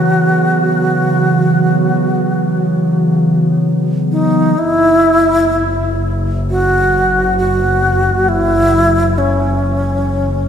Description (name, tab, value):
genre	ambient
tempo	free time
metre	none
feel	none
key	unclear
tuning	A4 = 440 Hz
part	breathy wooden-headed alto flute	melody	0.0-10.5 s	C#4 to F#4	-14 LUFS	equal	analog delay
part	warbly tape-like pad	sustained chords	0.0-10.5 s	C#3 to B3	-16 LUFS	right 1 dB	chorus, built-in reverb
part	rich chamber double bass section	bass	4.6-10.5 s	F#1	-17 LUFS	left 1 dB	none
room	wet plate reverb, RT60 3.1 s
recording	dreamy mix soaked in reverb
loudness	-11 LUFS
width	side -8 dB against mid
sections	0.0-4.6 A section; 4.6-10.5 B section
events	none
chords	0.0 Bsus24; 4.6 F#5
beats	free time